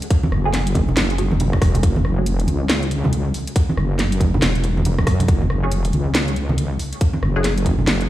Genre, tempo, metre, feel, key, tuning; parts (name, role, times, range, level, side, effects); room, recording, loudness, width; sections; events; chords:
deep dubstep; 139 BPM; 4/4; swing 61% on 16ths, half-time; F# minor; A4 = 439 Hz
garage drum kit; drums; 0.0-8.1 s; hi-hat, rim click, snare drum; -24 LUFS; equal
electronic kick drum; drums; 0.1-7.8 s; -17 LUFS; equal
congas; percussion; 0.2-7.9 s; -24 LUFS; right 1 dB; dub echo
wobble bass; bass; 0.3-8.1 s; E1 to F#2; -19 LUFS; equal; chorus
filtered dub chord stab; stabs; 0.5-2.3, 5.6-7.5 s; A3 to G#4; -28 LUFS; equal; phaser, analog chorus, dub echo
little or no reverb; played on a big sound system in a bare room, large studio reverb; -16 LUFS; side -14 dB against mid
0.0-8.1 A section
0.0 F#madd9